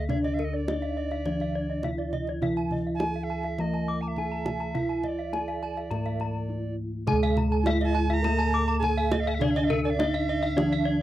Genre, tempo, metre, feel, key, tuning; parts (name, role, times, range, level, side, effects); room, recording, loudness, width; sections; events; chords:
Balinese gamelan; 103 BPM; 4/4; straight; D pelog; A4 = 437 Hz
gamelan-type bronze metallophone; melody; 0.0-11.0 s; D4 to Bb4-40c; -32 LUFS; right 2 dB
bright reedy alto recorder; second line; 0.0-11.0 s; D5 to Bb5-35c; -35 LUFS; right 5 dB
gamelan-type bronze metallophone; accompaniment; 0.0-11.0 s; D3 to Bb3-40c; -34 LUFS; left 1 dB
gamelan-type bronze metallophone; arpeggios; 0.0-11.0 s; Bb4-40c to D6; -33 LUFS; left 5 dB
gamelan-type bossed gongs; bass; 0.0-11.0 s; D2 to A4-45c; -29 LUFS; left 1 dB
kendang; percussion; 0.1-10.8 s; -33 LUFS; right 2 dB
gamelan-type bronze metallophone; arpeggios; 0.2-10.9 s; D5 to Bb5-40c; -34 LUFS; right 6 dB
light reverb; dry, close 1970s-style studio recording; -25 LUFS; side -13 dB against mid
0.0-7.1 A section; 7.1-11.0 A section
drum fill 6.5-7.1